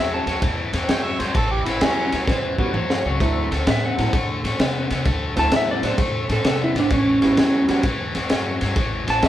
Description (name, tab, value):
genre	electric blues shuffle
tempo	129 BPM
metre	4/4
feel	swing 68% on 8ths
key	unclear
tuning	A4 = 439 Hz
part	clean lap steel guitar	melody	0.0-9.3 s	C#4 to A5	-22 LUFS	right 1 dB	slapback echo
part	biting overdriven guitar	riff	0.0-9.3 s	A2 to B3	-26 LUFS	left 2 dB	none
part	upright bass	bass	0.0-9.3 s	G#1 to C3	-27 LUFS	equal	none
part	crunchy breakbeat drum kit	drums	0.3-9.3 s	kick drum, ride cymbal, snare drum, toms	-22 LUFS	equal	none
part	overdriven harmonica	second line	0.9-2.2 s	C#4 to G5	-25 LUFS	right 1 dB	none
part	clear upright piano	accompaniment	1.8-7.8 s	F#3 to F#4	-27 LUFS	right 2 dB	none
room	light reverb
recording	band playing live in one room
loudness	-18 LUFS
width	side -12 dB against mid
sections	0.0-9.3 A section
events	drum fill 2.3-3.2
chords	0.0 A7; 3.2 D7; 6.9 A7